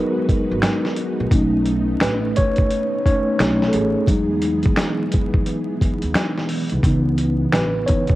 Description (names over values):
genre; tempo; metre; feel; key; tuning
lo-fi hip hop; 87 BPM; 4/4; swing 65% on 16ths; unclear; A4 = 439 Hz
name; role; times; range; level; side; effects
mellow tine electric piano; accompaniment; 0.0-8.2 s; E3 to C#5; -20 LUFS; equal; medium stereo tremolo, cassette tape, low-pass filter
string machine, cellos; sustained chords; 0.0-8.2 s; C#3 to B4; -27 LUFS; equal; ensemble chorus, low-pass filter, cassette tape
dusty soul sampler-style drum kit; drums; 0.3-8.2 s; finger snaps, hi-hat, kick drum, snare drum; -20 LUFS; equal; cassette tape
upright bass; bass; 0.5-7.8 s; G#1 to E2; -23 LUFS; equal; tube saturation
room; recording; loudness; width
light reverb; home recording on cassette, vinyl crackle; -17 LUFS; side -16 dB against mid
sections
0.0-8.2 A section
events
tine electric piano solo 0.0-8.2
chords
0.0 G#m7; 1.3 B9; 4.1 Emaj7; 6.8 C#m9